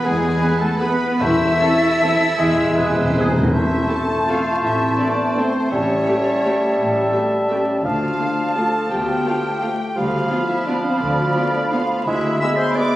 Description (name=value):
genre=classical, orchestral ballroom waltz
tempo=144-185 BPM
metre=3/4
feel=rubato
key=A minor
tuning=A4 = 440 Hz
part: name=warm symphonic violin section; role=melody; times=0.0-12.9 s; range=E5 to E6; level=-32 LUFS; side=left 1 dB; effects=none
part: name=mellow clarinet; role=second line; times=0.0-13.0 s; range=C4 to E5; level=-27 LUFS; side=equal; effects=none
part: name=rich studio violin section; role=second line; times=0.0-13.0 s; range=G#4 to E6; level=-28 LUFS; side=left 1 dB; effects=none
part: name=silver concert flute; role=second line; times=0.0-13.0 s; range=G#4 to B5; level=-25 LUFS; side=left 1 dB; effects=none
part: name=warm cor anglais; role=second line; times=0.0-13.0 s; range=G#4 to F5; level=-27 LUFS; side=right 1 dB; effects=none
part: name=clear bassoon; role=accompaniment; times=0.0-13.0 s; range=F3 to B3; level=-23 LUFS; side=equal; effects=none
part: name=mellow French horn section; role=sustained chords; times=0.0-13.0 s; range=E3 to E4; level=-27 LUFS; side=left 2 dB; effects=none
part: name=rich symphonic cello section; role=bass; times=0.0-12.4 s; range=D2 to E4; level=-27 LUFS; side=equal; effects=none
part: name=rich studio double bass section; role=bass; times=0.1-12.4 s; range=A1 to E2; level=-27 LUFS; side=equal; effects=none
part: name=warm chamber viola section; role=accompaniment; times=0.4-12.9 s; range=A3 to A4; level=-28 LUFS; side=equal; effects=none
part: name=clear trombone section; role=sustained chords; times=0.4-3.3 s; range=E3 to C4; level=-31 LUFS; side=right 1 dB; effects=none
part: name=warm trumpet section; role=stabs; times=0.4-3.3 s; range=G#4 to B4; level=-29 LUFS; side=equal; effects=none
part: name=timpani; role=percussion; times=1.2-3.5, 5.7-6.2 s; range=E2 to A2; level=-25 LUFS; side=equal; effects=none
room=wet scoring stage reverb, RT60 1.6 s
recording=recorded on a phone in the room, studio reverb, vinyl crackle, compression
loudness=-16 LUFS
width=side -15 dB against mid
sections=0.0-3.5 A section; 3.5-13.0 B section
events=timpani fill 2.4-3.5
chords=0.0 E; 1.2 Am/E; 2.4 E; 3.5 Am; 5.7 A7; 7.8 Dm; 10.0 Bdim/D; 12.1 E7/D